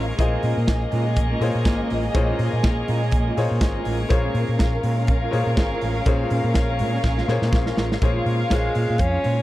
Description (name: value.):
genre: disco.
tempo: 122 BPM.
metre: 4/4.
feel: swing 56% on 16ths.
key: unclear.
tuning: A4 = 440 Hz.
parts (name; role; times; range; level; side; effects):
dark studio string section; second line; 0.0-9.4 s; Bb3 to F5; -28 LUFS; equal; slapback echo.
clear grand piano; accompaniment; 0.0-9.4 s; Bb3 to Eb5; -28 LUFS; left 5 dB; none.
mellow electric guitar; accompaniment; 0.0-9.4 s; Ab3 to C5; -32 LUFS; right 5 dB; none.
bright tonewheel organ; sustained chords; 0.0-9.4 s; Ab3 to Db4; -34 LUFS; equal; overdrive, slow rotary speaker.
hollow-body short-scale fingered electric bass; bass; 0.0-9.4 s; Ab1 to Bb2; -23 LUFS; equal; none.
modern studio drum kit; drums; 0.2-9.4 s; hi-hat, kick drum, snare drum; -22 LUFS; equal; none.
breathy tenor saxophone; melody; 8.5-9.4 s; Ab3 to Db4; -24 LUFS; equal; none.
room: little or no reverb.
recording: dry, close 1970s-style studio recording.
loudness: -19 LUFS.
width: side -16 dB against mid.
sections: 0.0-8.0 A section; 8.0-9.4 B section.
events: drum fill 7.0-8.0; tenor saxophone solo 8.0-9.4.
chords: 0.0 Bbm7; 8.0 Bbm9.